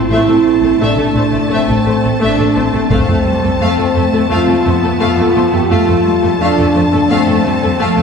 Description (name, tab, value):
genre	cinematic, epic orchestral film score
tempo	86 BPM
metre	4/4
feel	straight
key	unclear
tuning	A4 = 440 Hz
part	rich symphonic violin section	melody	0.0-8.0 s	A5	-22 LUFS	left 2 dB	none
part	dark French horn section	sustained chords	0.0-8.0 s	A3 to G4	-14 LUFS	equal	none
part	rich symphonic cello section	bass	0.0-8.0 s	F3 to D4	-19 LUFS	equal	none
part	clear symphonic violin section	second line	0.1-8.0 s	A4 to F5	-22 LUFS	left 3 dB	none
part	rich symphonic viola section	accompaniment	0.1-8.0 s	A3	-20 LUFS	left 1 dB	none
part	rich symphonic double bass section	bass	0.1-8.0 s	A1 to F2	-17 LUFS	right 1 dB	none
part	taiko ensemble	drums	2.9-4.3 s	none	-18 LUFS	equal	none
room	wet concert hall reverb, RT60 2.1 s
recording	heard from further back in the room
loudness	-10 LUFS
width	side -6 dB against mid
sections	0.0-8.0 A section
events	none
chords	0.0 Am; 2.9 F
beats	| 0.12 0.81 1.51 2.21 | 2.91 3.61 4.30 5.00 | 5.70 6.40 7.10 7.80